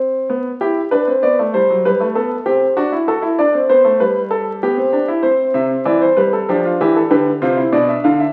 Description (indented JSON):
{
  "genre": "classical, baroque-style 3-part fugue for grand piano",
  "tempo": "97 BPM",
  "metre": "4/4",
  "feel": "straight",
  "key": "unclear",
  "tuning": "A4 = 442 Hz",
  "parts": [
    { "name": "clear grand piano", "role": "solo", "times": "0.0-8.3 s", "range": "B2 to F5", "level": "-16 LUFS", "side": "equal", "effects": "none" }
  ],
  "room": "wet stone room reverb, RT60 1.2 s",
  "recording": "very old 78 rpm record, vinyl crackle",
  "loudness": "-16 LUFS",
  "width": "mono",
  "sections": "0.0-8.3 A section",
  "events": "none",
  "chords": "0.3 G/B; 1.5 Am7; 2.8 D7; 4.0 G; 5.2 C; 6.5 Dm7; 7.7 G7/B (rootless)"
}